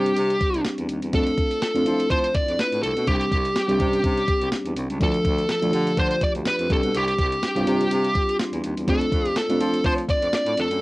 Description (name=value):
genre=1980s-style pop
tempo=124 BPM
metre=4/4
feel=swing 55% on 16ths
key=unclear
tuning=A4 = 440 Hz
part: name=fuzz lead guitar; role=melody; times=0.0-10.8 s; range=G4 to D5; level=-23 LUFS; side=equal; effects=distortion, cassette tape
part: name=mellow FM electric piano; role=accompaniment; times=0.0-10.8 s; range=F3 to C6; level=-26 LUFS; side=equal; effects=chorus, cassette tape
part: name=breathy baritone saxophone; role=bass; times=0.0-10.8 s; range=C2 to F3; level=-29 LUFS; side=equal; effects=none
part: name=clean 12-bit digital drum machine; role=drums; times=0.1-10.8 s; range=hi-hat, kick drum, snare drum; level=-26 LUFS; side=equal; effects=cassette tape
room=moderate booth ambience, RT60 0.2 s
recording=home recording on cassette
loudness=-20 LUFS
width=side -20 dB against mid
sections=0.0-10.8 A section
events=FM electric piano fill 8.2-8.9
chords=0.0 Csus2; 1.1 F6; 3.1 Csus2; 5.0 Dm; 6.7 Csus2; 8.9 F6